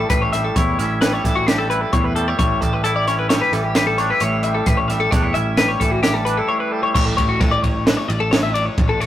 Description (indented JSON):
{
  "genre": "math rock and midwest emo",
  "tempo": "131 BPM",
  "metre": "5/4",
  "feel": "straight",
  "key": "unclear",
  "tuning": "A4 = 440 Hz",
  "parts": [
    { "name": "twangy electric guitar", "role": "accompaniment", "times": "0.0-9.1 s", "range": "A2 to E4", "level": "-24 LUFS", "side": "right 3 dB", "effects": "none" },
    { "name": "twelve-string electric guitar", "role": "arpeggios", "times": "0.0-9.1 s", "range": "F#4 to E5", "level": "-20 LUFS", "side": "left 4 dB", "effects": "none" },
    { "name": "picked electric bass", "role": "bass", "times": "0.0-9.1 s", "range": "A1 to E2", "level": "-23 LUFS", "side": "right 1 dB", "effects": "none" },
    { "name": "compact cocktail drum kit", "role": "drums", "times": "0.1-9.1 s", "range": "crash cymbal, hi-hat, kick drum, ride cymbal, snare drum", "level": "-20 LUFS", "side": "right 1 dB", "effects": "none" }
  ],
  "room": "moderate stone room reverb, RT60 1.0 s",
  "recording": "rough rehearsal-room recording, warm saturation",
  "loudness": "-16 LUFS",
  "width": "side -12 dB against mid",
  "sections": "0.0-6.9 A section; 6.9-9.1 B section",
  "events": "none",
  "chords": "0.0 A7",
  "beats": "| 0.10 0.56 1.01 1.47 1.93 | 2.38 2.84 3.29 3.75 4.21 | 4.67 5.12 5.58 6.04 6.49 | 6.95 7.41 7.86 8.32 8.77"
}